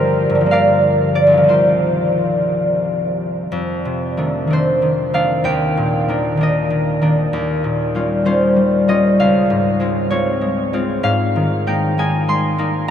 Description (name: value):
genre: classical, solo harp piece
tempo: 58-67 BPM (dotted quarters)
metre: 6/8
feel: rubato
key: unclear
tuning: A4 = 440 Hz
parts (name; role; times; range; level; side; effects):
- concert harp; solo; 0.0-12.9 s; C2 to C6; -14 LUFS; equal; none
room: wet huge ambient reverb, RT60 9.3 s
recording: in a vast, echoing space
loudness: -14 LUFS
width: side -9 dB against mid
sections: 0.0-3.5 A section; 3.5-12.9 B section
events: none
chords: 0.0 Gm7; 3.5 F13; 5.4 Ebmaj7; 7.3 Eb13; 9.2 Dbmaj7; 11.0 Abadd9